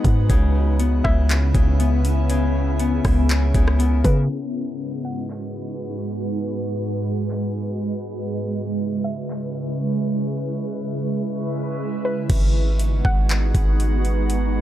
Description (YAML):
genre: hip hop, atmospheric cloud-rap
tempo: 120 BPM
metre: 4/4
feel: half-time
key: G# minor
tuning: A4 = 441 Hz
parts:
  - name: ethereal airy pad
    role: sustained chords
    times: 0.0-14.6 s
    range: G#2 to B4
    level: -25 LUFS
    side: right 1 dB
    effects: ensemble chorus, built-in reverb, sidechain pumping
  - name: Celtic harp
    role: arpeggios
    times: 0.0-6.9 s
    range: C#3 to B3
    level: -29 LUFS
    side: left 5 dB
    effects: tape echo
  - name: warm 808-style bass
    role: bass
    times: 0.0-4.3, 12.3-14.6 s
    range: G#1 to C#3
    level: -19 LUFS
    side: equal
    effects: none
  - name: smooth R&B drum kit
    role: drums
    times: 0.0-14.4 s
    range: crash cymbal, handclaps, hi-hat, kick drum, rim click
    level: -21 LUFS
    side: equal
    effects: none
  - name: drifting glass-harmonics texture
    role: texture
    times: 0.0-14.6 s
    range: B3 to F#5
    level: -36 LUFS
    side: right 1 dB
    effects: chorus, built-in reverb
  - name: soft round pluck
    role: melody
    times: 1.0-14.3 s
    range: B4 to F#5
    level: -30 LUFS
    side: left 1 dB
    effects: chorus, tape echo
room: digital ambience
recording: dark, warm production, low-pass filter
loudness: -19 LUFS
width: side -12 dB against mid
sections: 0.0-4.3 A section; 4.3-12.3 B section; 12.3-14.6 C section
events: filter sweep 4.3-12.3; drums muted 11.3-12.3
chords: 0.3 C#m7; 4.3 G#m7; 8.3 C#m7; 12.3 G#m7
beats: | 0.30 0.80 1.30 1.80 | 2.30 2.80 3.30 3.80 | 4.30 4.80 5.30 5.80 | 6.30 6.80 7.30 7.80 | 8.30 8.80 9.30 9.80 | 10.30 10.80 11.30 11.80 | 12.30 12.80 13.30 13.80 | 14.30